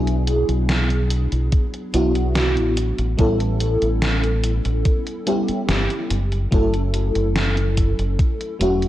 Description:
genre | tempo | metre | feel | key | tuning
vaporwave | 72 BPM | 4/4 | straight | unclear | A4 = 444 Hz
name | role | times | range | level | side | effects
FM electric piano with soft pad layer | accompaniment | 0.0-8.9 s | F#3 to A4 | -22 LUFS | equal | ensemble chorus, tape echo
deep dub fingered electric bass | bass | 0.0-8.9 s | E1 to B1 | -21 LUFS | equal | none
gated 80s digital drum machine | drums | 0.1-8.9 s | hi-hat, snare drum | -25 LUFS | equal | gated reverb, gated reverb snare
electronic kick drum | drums | 1.5-8.4 s | none | -19 LUFS | equal | none
room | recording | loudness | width
light reverb | cassette tape | -18 LUFS | side -14 dB against mid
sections
0.0-8.9 A section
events
none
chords
0.0 E9/B; 2.8 A7; 6.1 F#m7

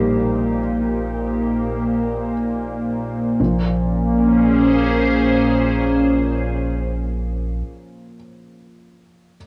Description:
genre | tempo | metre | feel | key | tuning
ambient | free time | none | none | Bb dorian | A4 = 439 Hz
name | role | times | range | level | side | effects
evolving wavetable pad | sustained chords | 0.0-7.6 s | Bb2 to C5 | -20 LUFS | equal | chorus, built-in reverb, cassette tape
felt-muted upright piano | arpeggios | 0.0-9.4 s | F3 to G3 | -29 LUFS | equal | cassette tape, analog delay, plate reverb
warm sub bass | bass | 0.0-7.6 s | Bb1 | -28 LUFS | equal | transformer saturation
analog drone | drone | 4.9-7.7 s | Bb3 to F4 | -38 LUFS | equal | none
room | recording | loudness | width
wet booth ambience, RT60 0.2 s | home recording on cassette, small room ambience | -19 LUFS | mono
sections
0.0-3.4 A section; 3.4-6.9 B section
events
none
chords
0.0 Cm/Bb; 3.4 Bbm7

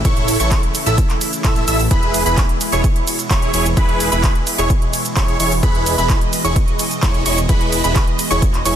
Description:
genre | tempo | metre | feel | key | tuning
EDM, festival progressive house | 129 BPM | 4/4 | straight | E major | A4 = 440 Hz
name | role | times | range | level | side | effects
lush unison pad | sustained chords | 0.0-8.8 s | B2 to D#5 | -25 LUFS | right 1 dB | chorus, phaser, sidechain pumping
fat analog bass | bass | 0.0-8.8 s | E1 to A2 | -21 LUFS | equal | sidechain pumping
electronic kick drum | drums | 0.0-8.5 s | none | -16 LUFS | equal | none
plucky unison lead | arpeggios | 0.1-8.8 s | B5 to E6 | -24 LUFS | equal | sidechain pumping, ping-pong delay
dense compressed supersaw | riff | 0.1-8.8 s | E4 to E5 | -21 LUFS | right 1 dB | sidechain pumping, ping-pong delay
big-room dance drum kit | drums | 0.1-8.7 s | handclaps, hi-hat, ride cymbal, shaker | -22 LUFS | right 2 dB | none
room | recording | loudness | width
digital ambience | dense, heavily limited modern master | -14 LUFS | side -10 dB against mid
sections
0.0-8.8 A section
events
none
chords
0.0 A; 1.9 E

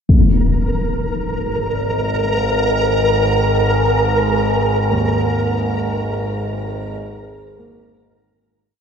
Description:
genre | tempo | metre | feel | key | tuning
dark ambient drone | free time | none | none | unclear | A4 = 440 Hz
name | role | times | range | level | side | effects
overtone-sweeping drone | drone | 1.0-8.8 s | G#1 to G#2 | -20 LUFS | equal | chorus, built-in reverb
impact | percussion | 0.1-0.3 s | none | -17 LUFS | left 1 dB | low-pass filter on sfx
flickering grainy texture | texture | 0.6-8.7 s | A#4 | -19 LUFS | equal | built-in reverb, shimmer reverb
dark baby grand piano | arpeggios | 4.9-8.8 s | D#2 to A#3 | -27 LUFS | right 3 dB | none
room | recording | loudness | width
wet huge ambient reverb, RT60 7.5 s | none | -15 LUFS | side -7 dB against mid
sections
0.1-8.7 A section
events
fade-in on synth drone 0.1-8.7; fade-in on grand piano 0.1-8.7; fade-out 4.4-8.7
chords
0.1 G#sus2

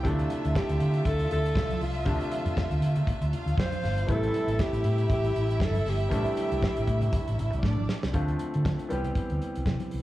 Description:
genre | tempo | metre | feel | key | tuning
disco | 119 BPM | 4/4 | swing 56% on 16ths | D dorian | A4 = 440 Hz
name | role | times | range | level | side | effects
rich studio violin section | second line | 0.0-8.1 s | D4 to F5 | -35 LUFS | right 2 dB | slapback echo
bright concert grand piano | accompaniment | 0.0-10.0 s | B2 to G4 | -34 LUFS | left 1 dB | none
hollow-body short-scale fingered electric bass | bass | 0.0-10.0 s | G1 to D3 | -28 LUFS | equal | none
warm soul drum kit | drums | 0.0-10.0 s | hi-hat, kick drum, snare drum | -30 LUFS | equal | none
congas | percussion | 0.1-9.9 s | none | -38 LUFS | left 3 dB | none
breathy alto saxophone | melody | 0.6-7.4 s | F4 to C5 | -32 LUFS | equal | slapback echo
room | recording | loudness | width
small room ambience | live gig heard through the venue's PA, club reverb | -25 LUFS | side -15 dB against mid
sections
0.0-8.1 A section; 8.1-10.0 B section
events
drum fill 7.6-8.1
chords
0.0 Dm9; 4.1 Am7; 8.1 Dm7; 8.9 Cmaj7

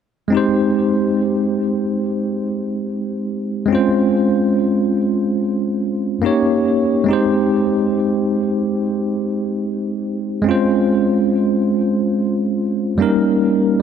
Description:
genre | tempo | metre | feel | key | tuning
R&B | 71 BPM | 4/4 | swing 54% on 16ths | Ab major | A4 = 440 Hz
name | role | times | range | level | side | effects
bell-like tine electric piano | solo | 0.3-13.8 s | G3 to Db5 | -16 LUFS | equal | medium stereo tremolo, tape echo
room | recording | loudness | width
moderate lush hall reverb, RT60 2.8 s | dark, warm production | -16 LUFS | side -8 dB against mid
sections
0.3-13.8 A section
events
none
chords
0.3 Abmaj7; 3.7 Dbmaj7; 6.2 Eb7; 7.1 Abmaj7; 10.5 Dbmaj7; 13.0 Eb7

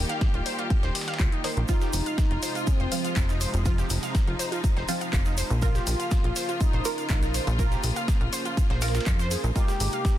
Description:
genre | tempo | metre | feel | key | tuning
melodic techno | 122 BPM | 4/4 | straight | F minor | A4 = 440 Hz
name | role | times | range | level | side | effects
rich studio string section | sustained chords | 0.0-10.2 s | C3 to G4 | -34 LUFS | left 1 dB | sidechain pumping
filtered dub chord stab | stabs | 0.0-10.2 s | Eb3 to Bb4 | -35 LUFS | right 4 dB | phaser, lush chorus, sidechain pumping, digital delay
plucky analog bass | bass | 0.0-9.9 s | Eb1 to F2 | -27 LUFS | equal | sidechain pumping
wide unison pluck | arpeggios | 0.1-10.0 s | Eb4 to F5 | -34 LUFS | right 1 dB | sidechain pumping, digital delay
dusty soul sampler-style drum kit | drums | 0.1-10.2 s | hi-hat, ride cymbal, snare drum | -41 LUFS | right 2 dB | sidechain pumping on cymbals, high-pass filter on cymbals, high-pass filter on snare, sidechain pumping on hats, high-pass filter on hats
house drum kit | drums | 0.1-10.2 s | handclaps, hi-hat | -34 LUFS | left 4 dB | sidechain pumping on hats
electronic kick drum | drums | 0.2-10.2 s | none | -24 LUFS | equal | none
expressive synth lead | melody | 1.7-10.2 s | C4 to G4 | -35 LUFS | left 1 dB | analog chorus, dub echo
tube shaker | percussion | 1.7-10.2 s | none | -39 LUFS | right 5 dB | none
room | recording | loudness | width
little or no reverb | dense, heavily limited modern master | -23 LUFS | side -12 dB against mid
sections
0.0-10.2 A section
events
none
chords
0.0 Eb; 1.7 Fm; 5.6 Bbm; 9.6 Abadd9

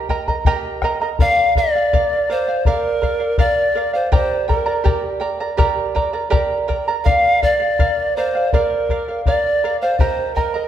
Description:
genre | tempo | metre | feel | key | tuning
andean folk, Andean ensemble | 82 BPM | 4/4 | straight | unclear | A4 = 439 Hz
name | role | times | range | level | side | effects
charango | accompaniment | 0.0-10.7 s | G4 to Bb5 | -20 LUFS | right 3 dB | none
bombo | percussion | 0.1-10.5 s | none | -18 LUFS | left 2 dB | none
polished pan flute | melody | 1.2-10.7 s | Bb4 to F5 | -18 LUFS | equal | tape echo
room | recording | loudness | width
wet recital hall reverb, RT60 1.6 s | none | -15 LUFS | side -10 dB against mid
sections
0.0-10.7 A section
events
none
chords
0.0 Eb; 1.2 Bb; 4.1 Gm; 7.0 Bb; 10.0 Eb

